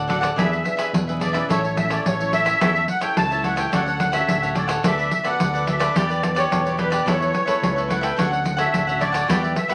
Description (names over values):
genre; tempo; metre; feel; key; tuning
samba and choro; 108 BPM; 4/4; straight; D major; A4 = 440 Hz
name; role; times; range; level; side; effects
cavaquinho; accompaniment; 0.0-9.7 s; D4 to F#5; -28 LUFS; equal; none
nylon-string guitar; accompaniment; 0.0-9.7 s; A2 to A4; -33 LUFS; equal; none
fingered electric bass; bass; 0.0-9.5 s; A1 to E2; -30 LUFS; equal; none
musette accordion; melody; 0.1-9.7 s; B4 to A5; -25 LUFS; equal; none
pandeiro; percussion; 0.1-9.7 s; none; -27 LUFS; equal; none
room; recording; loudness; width
wet studio reverb, RT60 0.5 s; vinyl crackle; -21 LUFS; mono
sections
0.0-9.7 A section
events
none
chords
0.4 E7; 1.5 A; 3.7 Dmaj7; 4.8 Bm7/D; 6.0 Em7; 7.1 Asus2/E; 8.2 Dmaj7